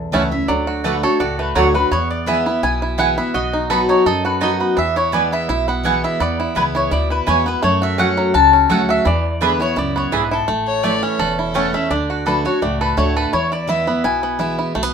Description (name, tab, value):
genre	bluegrass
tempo	168 BPM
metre	4/4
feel	swing 53% on 8ths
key	unclear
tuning	A4 = 439 Hz
part	mandolin	melody	0.0-14.6 s	A4 to A5	-20 LUFS	left 3 dB	none
part	picked steel-string acoustic guitar	accompaniment	0.0-14.9 s	E2 to F#4	-21 LUFS	equal	none
part	upright bass	bass	0.0-14.9 s	E1 to F#2	-25 LUFS	equal	none
part	bluegrass banjo	arpeggios	0.1-14.9 s	E3 to A4	-22 LUFS	right 4 dB	none
part	mandolin	stabs	0.1-11.6 s	A3 to B5	-21 LUFS	right 7 dB	none
part	clear fiddle	second line	10.7-11.9 s	A4 to D5	-23 LUFS	left 3 dB	none
room	moderate studio reverb, RT60 0.6 s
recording	minimal, uncompressed stereo recording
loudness	-15 LUFS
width	side -6 dB against mid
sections	0.5-11.9 A section; 11.9-14.9 A section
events	none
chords	0.5 D; 1.9 E; 3.3 B; 4.8 E; 7.6 F#m; 9.1 E7; 10.5 A; 11.9 D; 13.3 E